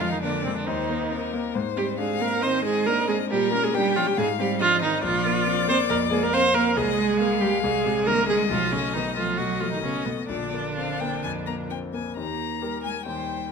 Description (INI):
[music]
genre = quick classical-period movement for piano quartet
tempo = 137 BPM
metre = 4/4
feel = rubato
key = Eb major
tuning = A4 = 443 Hz
[part]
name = rich violin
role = melody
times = 0.0-13.5 s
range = Bb4 to Bb5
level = -29 LUFS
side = left 12 dB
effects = none
[part]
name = warm cello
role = second line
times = 0.0-13.5 s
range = B2 to C4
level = -29 LUFS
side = right 7 dB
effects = none
[part]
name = clear concert grand piano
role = accompaniment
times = 0.0-13.5 s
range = Bb1 to Bb4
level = -29 LUFS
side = left 4 dB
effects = none
[part]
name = rich viola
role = accompaniment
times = 0.0-13.5 s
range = B3 to C5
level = -25 LUFS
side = right 3 dB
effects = none
[sound]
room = wet recital hall reverb, RT60 1.5 s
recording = none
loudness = -22 LUFS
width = side -5 dB against mid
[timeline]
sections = 0.0-12.2 A section; 12.2-13.5 B section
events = none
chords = 0.0 Ddim/F; 0.7 Eb5; 1.5 Ab; 3.3 Gdim/Bb; 4.2 Ab; 5.0 Bb; 6.8 Ab/C; 8.5 B7; 10.3 Bb; 12.2 Eb